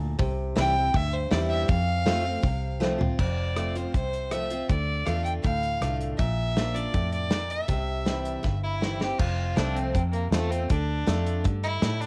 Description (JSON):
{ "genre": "honky-tonk and classic country", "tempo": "160 BPM", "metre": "4/4", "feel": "straight", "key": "F major", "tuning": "A4 = 440 Hz", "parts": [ { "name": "picked steel-string acoustic guitar", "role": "accompaniment", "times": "0.0-12.1 s", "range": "F2 to F4", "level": "-34 LUFS", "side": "equal", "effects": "cassette tape" }, { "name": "vintage muted fingered electric bass", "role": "bass", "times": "0.0-12.1 s", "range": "F1 to A2", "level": "-31 LUFS", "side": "equal", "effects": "none" }, { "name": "natural country drum kit", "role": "drums", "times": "0.2-12.1 s", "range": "crash cymbal, hi-hat, kick drum, rim click, snare drum, toms", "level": "-30 LUFS", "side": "equal", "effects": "cassette tape" }, { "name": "clear fiddle", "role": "melody", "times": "0.6-12.1 s", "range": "A3 to G5", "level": "-33 LUFS", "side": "equal", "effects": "cassette tape" } ], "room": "light reverb, small room ambience", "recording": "home recording on cassette", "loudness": "-27 LUFS", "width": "mono", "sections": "0.0-3.2 A section; 3.2-9.2 B section; 9.2-12.1 C section", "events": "drum fill 2.8-3.2, 8.4-9.2", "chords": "0.2 C; 1.7 F; 4.7 Dm; 6.2 Bb; 7.7 C; 9.2 F; 10.7 Dm" }